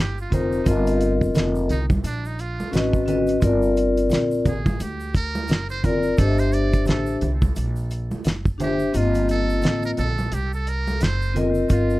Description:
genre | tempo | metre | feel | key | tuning
hip hop, jazz-hop | 87 BPM | 4/4 | swing 60% on 16ths | unclear | A4 = 440 Hz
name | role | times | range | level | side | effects
trumpet with metal mute | melody | 0.0-12.0 s | D4 to D5 | -31 LUFS | right 3 dB | tape echo
upright bass | bass | 0.0-12.0 s | F1 to D2 | -24 LUFS | equal | none
tube shaker and congas | percussion | 0.2-12.0 s | none | -31 LUFS | right 2 dB | none
vibraphone with medium hard mallets | accompaniment | 0.3-12.0 s | Bb3 to E5 | -21 LUFS | left 2 dB | none
cloth-damped thuddy drum kit | drums | 0.3-11.9 s | hi-hat, kick drum, snare drum | -22 LUFS | equal | vintage 12-bit sampler grit
room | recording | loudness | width
light reverb | rough home demo mix | -19 LUFS | side -18 dB against mid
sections
0.0-11.7 A section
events
muted trumpet solo 0.0-11.7; kick muted 8.9-11.7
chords
0.0 F7sus4; 0.7 Eb69; 2.7 Abm7; 3.4 Gm7; 6.2 C9/G; 8.9 F7sus4/G

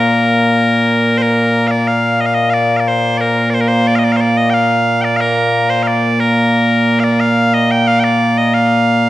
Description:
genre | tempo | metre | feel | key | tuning
scottish traditional, Scottish pipe music | 90 BPM | 2/4 | straight | Bb major | A4 = 440 Hz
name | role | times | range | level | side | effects
loud bright bagpipes | solo | 0.0-9.1 s | Bb2 to G5 | -11 LUFS | equal | none
room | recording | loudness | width
wet recital hall reverb, RT60 1.8 s | none | -11 LUFS | side -15 dB against mid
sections
0.0-1.2 A section; 1.2-9.1 A section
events
none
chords
none

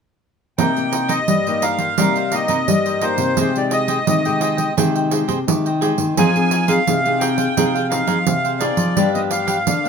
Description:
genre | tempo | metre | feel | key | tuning
samba and choro | 86 BPM | 4/4 | straight | C minor | A4 = 440 Hz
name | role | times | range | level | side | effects
accordion | melody | 0.6-9.9 s | C5 to Ab5 | -20 LUFS | left 1 dB | light tremolo tuning
cavaquinho | accompaniment | 0.6-9.9 s | D4 to G5 | -24 LUFS | right 5 dB | none
nylon-string guitar | accompaniment | 0.6-9.9 s | G2 to Ab4 | -24 LUFS | left 5 dB | none
nylon-string guitar | bass | 0.6-9.9 s | C3 to G3 | -21 LUFS | left 2 dB | none
pandeiro | percussion | 0.6-9.9 s | none | -23 LUFS | right 8 dB | none
room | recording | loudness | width
moderate studio reverb, RT60 0.8 s | minimal, uncompressed stereo recording | -16 LUFS | side -6 dB against mid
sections
0.6-9.9 A section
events
none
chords
0.6 Cm7; 3.4 Abmaj7/C; 6.2 Fm7; 9.0 G7

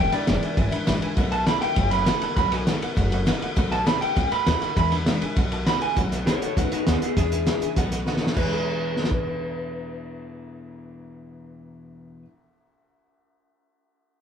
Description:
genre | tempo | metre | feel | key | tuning
rockabilly | 200 BPM | 4/4 | straight | E mixolydian | A4 = 438 Hz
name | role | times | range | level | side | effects
electric guitar through a small old amp | melody | 0.0-12.2 s | B3 to B5 | -26 LUFS | right 1 dB | none
picked steel-string acoustic guitar | accompaniment | 0.0-12.3 s | E2 to F#4 | -32 LUFS | left 2 dB | none
tack piano | accompaniment | 0.0-12.2 s | B4 to B5 | -34 LUFS | right 4 dB | none
upright bass | bass | 0.0-12.2 s | F#1 to E2 | -27 LUFS | equal | none
cloth-damped thuddy drum kit | drums | 0.1-9.2 s | crash cymbal, hi-hat, kick drum, ride cymbal, snare drum | -24 LUFS | equal | none
room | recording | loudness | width
light reverb | band playing live in one room | -21 LUFS | side -8 dB against mid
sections
0.0-6.0 A section; 6.0-8.4 B section; 8.4-10.8 C section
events
drum fill 8.1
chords
0.0 E7; 1.2 B7; 4.8 E7; 5.4 B7; 7.2 E7; 7.8 B7; 8.4 E7

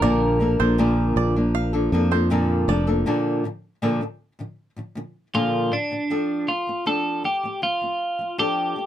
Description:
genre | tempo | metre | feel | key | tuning
acoustic pop | 79 BPM | 4/4 | straight | Bb major | A4 = 439 Hz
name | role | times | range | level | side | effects
twelve-string electric guitar | melody | 0.0-8.9 s | D4 to Bb4 | -24 LUFS | equal | none
flamenco guitar | accompaniment | 0.0-8.9 s | Bb2 to A4 | -23 LUFS | left 1 dB | none
bluegrass banjo | arpeggios | 0.0-2.9 s | C5 to F5 | -28 LUFS | right 9 dB | none
sustaining fretless electric bass | bass | 0.0-3.0 s | F1 to F2 | -22 LUFS | equal | none
room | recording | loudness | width
little or no reverb | close, detailed microphones | -20 LUFS | side -11 dB against mid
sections
0.0-3.1 A section; 3.1-6.1 B section; 6.1-8.9 C section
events
none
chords
0.0 Bbmaj7; 6.1 F6

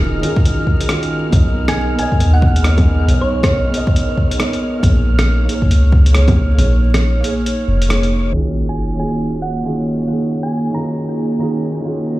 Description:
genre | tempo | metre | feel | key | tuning
future garage | 137 BPM | 4/4 | swing 61% on 16ths | unclear | A4 = 440 Hz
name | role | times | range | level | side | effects
felt-muted upright piano | accompaniment | 0.0-12.2 s | Eb3 to D#5 | -21 LUFS | right 1 dB | sidechain pumping, digital delay
warbly tape-like pad | sustained chords | 0.0-12.2 s | Bb3 to Eb5 | -24 LUFS | right 1 dB | chorus, built-in reverb, sidechain pumping
soft 808-style bass | bass | 0.0-8.3 s | Eb1 to D#2 | -14 LUFS | equal | tube saturation, sidechain pumping
wind-like tuned noise texture | texture | 0.0-8.3 s | F6 | -29 LUFS | equal | built-in reverb
lo-fi sampler-style drum kit | drums | 0.2-8.1 s | bongos, hi-hat, rim click | -22 LUFS | equal | none
electronic kick drum | drums | 0.4-6.3 s | none | -14 LUFS | equal | overdrive
thumb-piano-like synth pluck | melody | 1.7-3.9, 8.7-11.4 s | C#5 to Bb5 | -26 LUFS | right 1 dB | chorus, digital delay
sub drop | sound effects | 8.3-10.1 s | none | -23 LUFS | equal | none
room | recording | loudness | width
digital ambience | played on a big sound system in a bare room, large studio reverb, vinyl crackle, low-pass filter | -13 LUFS | side -17 dB against mid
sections
0.0-8.3 A section; 8.3-12.2 B section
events
break 6.6-8.3; band accent 7.9; impact 8.3-10.1; filter sweep 8.3-12.2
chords
0.0 Ebm11; 1.3 Bmaj9; 4.8 Bbm7; 8.3 Ebm11

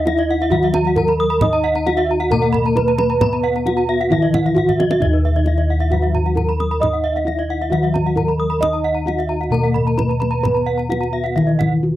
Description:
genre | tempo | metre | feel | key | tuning
Balinese gamelan | 133 BPM | 4/4 | straight | Eb pelog | A4 = 440 Hz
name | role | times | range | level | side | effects
gamelan-type bronze metallophone | melody | 0.0-12.0 s | Eb4 to Eb5 | -20 LUFS | right 2 dB | none
gamelan-type bronze metallophone | accompaniment | 0.0-12.0 s | Eb3 to Eb4 | -26 LUFS | left 7 dB | none
gamelan-type bronze metallophone | arpeggios | 0.0-11.5 s | Eb5 to Eb6 | -25 LUFS | left 6 dB | none
gamelan-type bossed gongs | bass | 0.0-12.0 s | Eb2 to Eb5 | -19 LUFS | equal | none
kendang | percussion | 0.1-11.7 s | none | -25 LUFS | right 2 dB | none
gamelan-type bronze metallophone | arpeggios | 0.2-11.7 s | Cb5-20c to Cb6-20c | -26 LUFS | right 6 dB | none
room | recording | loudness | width
little or no reverb | dry, close 1970s-style studio recording | -15 LUFS | side -14 dB against mid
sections
0.0-12.0 A section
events
drum fill 4.7-5.0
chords
none

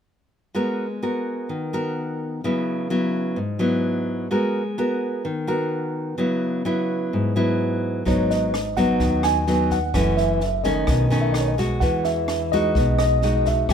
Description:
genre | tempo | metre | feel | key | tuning
bossa nova | 128 BPM | 4/4 | straight | G# minor | A4 = 440 Hz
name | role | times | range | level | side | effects
nylon-string guitar | accompaniment | 0.5-13.7 s | F#2 to A#4 | -22 LUFS | equal | none
mellow tine electric piano | melody | 8.1-13.7 s | C#5 to G#5 | -23 LUFS | right 1 dB | medium stereo tremolo
upright bass | bass | 8.1-13.7 s | F#1 to E2 | -24 LUFS | equal | none
compact cocktail drum kit | drums | 8.1-13.7 s | kick drum, rim click, snare drum | -28 LUFS | equal | none
room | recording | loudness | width
light reverb | minimal, uncompressed stereo recording | -20 LUFS | side -7 dB against mid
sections
0.6-8.1 A section; 8.1-13.7 B section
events
none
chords
0.6 G#m9; 2.4 C#m7; 4.3 G#m9; 6.2 C#m7; 8.1 G#m7; 9.9 F#m7; 10.9 B9; 11.8 Emaj9

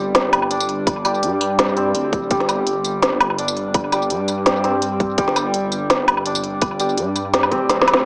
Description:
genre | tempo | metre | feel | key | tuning
half-time drum and bass | 167 BPM | 4/4 | swing 53% on 16ths, half-time | unclear | A4 = 440 Hz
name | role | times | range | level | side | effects
santur | arpeggios | 0.0-8.1 s | G3 to D4 | -24 LUFS | equal | analog delay
dark detuned saw bass | bass | 0.0-8.0 s | D1 to G2 | -27 LUFS | equal | tube saturation
organic electronic drum kit | drums | 0.1-8.0 s | hi-hat, snare drum, tambourine, woodblock | -21 LUFS | equal | overdrive, tape echo
electronic kick drum | drums | 0.9-7.6 s | none | -22 LUFS | equal | none
room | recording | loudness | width
moderate spring reverb, RT60 2.0 s | echo-heavy mix, small speaker sound | -19 LUFS | mono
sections
0.0-8.1 A section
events
drop 0.0-8.1; kick drops out 7.7-8.1; drum fill 7.7-8.1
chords
0.0 G5

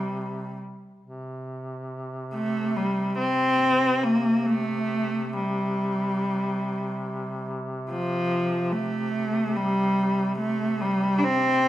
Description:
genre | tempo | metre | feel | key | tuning
caucasian folk, Caucasian lament | free time | none | none | unclear | A4 = 440 Hz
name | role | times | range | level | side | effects
rich cello | melody | 0.0-11.7 s | F3 to D4 | -23 LUFS | equal | none
warm duduk | drone | 0.0-11.7 s | C3 | -33 LUFS | equal | none
room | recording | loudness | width
moderate recital hall reverb, RT60 1.6 s | minimal, uncompressed stereo recording | -23 LUFS | side -13 dB against mid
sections
0.0-11.7 A section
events
none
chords
none

